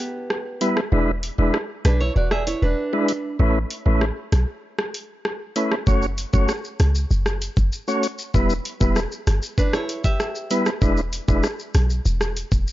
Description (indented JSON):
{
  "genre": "dancehall",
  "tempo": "97 BPM",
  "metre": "4/4",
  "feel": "straight",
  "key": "unclear",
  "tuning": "A4 = 440 Hz",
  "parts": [
    { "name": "nylon-string guitar", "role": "arpeggios", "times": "0.0-3.4, 9.6-10.8 s", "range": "B3 to E5", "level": "-26 LUFS", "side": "right 2 dB", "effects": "none" },
    { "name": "island pop drum kit", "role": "drums", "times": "0.3-12.7 s", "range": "hi-hat, kick drum, rim click, shaker", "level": "-24 LUFS", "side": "equal", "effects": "overdrive" },
    { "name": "tonewheel organ", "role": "accompaniment", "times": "0.6-11.5 s", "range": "G3 to C#5", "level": "-22 LUFS", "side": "equal", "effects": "fast rotary speaker" },
    { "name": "short 808-style bass", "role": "bass", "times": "0.9-12.6 s", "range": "E1 to C#2", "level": "-20 LUFS", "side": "equal", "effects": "none" }
  ],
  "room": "little or no reverb",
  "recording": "dry, gritty hardware recording, nothing above 7.5 kHz",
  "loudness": "-19 LUFS",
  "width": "side -15 dB against mid",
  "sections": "0.0-12.7 A section",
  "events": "break 0.0-5.9",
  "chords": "0.0 Em; 0.9 E7; 3.4 Aadd9; 5.9 F#m; 8.3 Em; 10.8 E7"
}